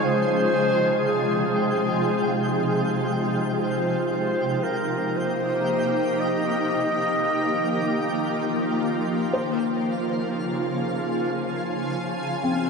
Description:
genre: ambient.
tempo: 58 BPM.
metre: 3/4.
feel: straight.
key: unclear.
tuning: A4 = 440 Hz.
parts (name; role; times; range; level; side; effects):
warm clarinet; melody; 0.0-8.8 s; Ab4 to Eb5; -26 LUFS; left 1 dB; diffuse ambient delay.
shimmering ambient pad; sustained chords; 0.0-12.7 s; C3 to Ab5; -24 LUFS; equal; chorus, built-in reverb.
organ-like drone; drone; 0.0-12.7 s; F3 to Eb4; -32 LUFS; right 1 dB; ensemble chorus, built-in reverb.
twinkling granular texture; texture; 0.0-12.7 s; F5 to G5; -36 LUFS; equal; built-in reverb.
felt-muted upright piano; arpeggios; 9.3-12.7 s; C4 to C5; -31 LUFS; left 2 dB; diffuse ambient delay.
room: wet huge ambient reverb, RT60 7.6 s.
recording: in a vast, echoing space.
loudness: -22 LUFS.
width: side -4 dB against mid.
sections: 0.0-12.7 A section.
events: fade-out on synth drone 0.0-12.7.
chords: 0.0 Fm; 3.1 Cm7; 6.2 Ebadd9; 9.3 Db.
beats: | 0.02 1.05 2.09 | 3.12 4.16 5.19 | 6.22 7.26 8.29 | 9.33 10.36 11.40 | 12.43.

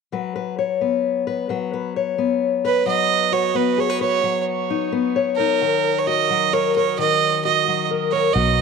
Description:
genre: folk.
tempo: 131 BPM.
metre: 3/4.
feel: straight.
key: unclear.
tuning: A4 = 438 Hz.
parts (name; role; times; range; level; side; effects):
fingerpicked steel-string acoustic guitar; accompaniment; 0.1-8.6 s; B2 to C#5; -21 LUFS; left 9 dB; none.
clear fiddle; melody; 2.7-8.6 s; A#4 to D#5; -19 LUFS; right 10 dB; tape echo.
fingered electric bass; bass; 8.4-8.6 s; B1; -19 LUFS; right 1 dB; none.
room: moderate spring reverb, RT60 2.3 s.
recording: 1960s-style stereo with parts hard left and right.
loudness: -18 LUFS.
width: side -5 dB against mid.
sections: 0.1-2.9 A section; 2.9-8.6 B section.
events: none.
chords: 0.1 F#sus4; 5.6 D#m.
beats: | 0.12 0.58 1.03 | 1.49 1.95 2.41 | 2.87 3.33 3.78 | 4.24 4.70 5.16 | 5.61 6.07 6.53 | 6.98 7.44 7.90 | 8.35.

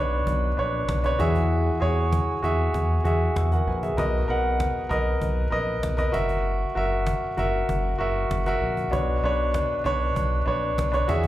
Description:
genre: piano-driven pop.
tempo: 97 BPM.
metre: 4/4.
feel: straight.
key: unclear.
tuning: A4 = 440 Hz.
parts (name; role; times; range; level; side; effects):
warm concert grand piano; accompaniment; 0.0-11.3 s; B2 to G#5; -24 LUFS; equal; slapback echo.
round analog bass; bass; 0.0-11.3 s; F#1 to E2; -25 LUFS; equal; none.
cajon; drums; 0.1-11.3 s; none; -34 LUFS; equal; slapback echo.
room: small room ambience.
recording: live gig heard through the venue's PA, club reverb.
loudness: -22 LUFS.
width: side -14 dB against mid.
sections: 0.0-11.3 A section.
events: none.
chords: 0.0 Bmadd9; 1.2 Eadd9; 4.0 Bmaj7; 6.1 F#7; 8.9 Bmadd9.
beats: 0.27 0.89 | 1.51 2.13 2.75 3.36 | 3.98 4.60 5.22 5.84 | 6.46 7.07 7.69 8.31 | 8.93 9.55 10.17 10.78.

